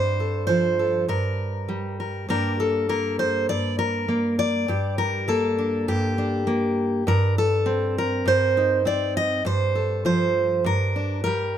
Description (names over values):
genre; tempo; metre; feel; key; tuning
folk, solo fingerstyle acoustic guitar; 100 BPM; 4/4; straight; G minor; A4 = 439 Hz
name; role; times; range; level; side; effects
fingerpicked steel-string acoustic guitar; solo; 0.0-11.6 s; G2 to Eb5; -21 LUFS; equal; none
room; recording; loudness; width
light reverb; close, detailed microphones; -21 LUFS; side -9 dB against mid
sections
0.0-2.3 A section; 2.3-11.6 A section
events
none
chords
0.0 Fadd9/G; 1.1 Gm; 7.1 Cm/G; 9.4 Fadd9/G; 10.6 Gm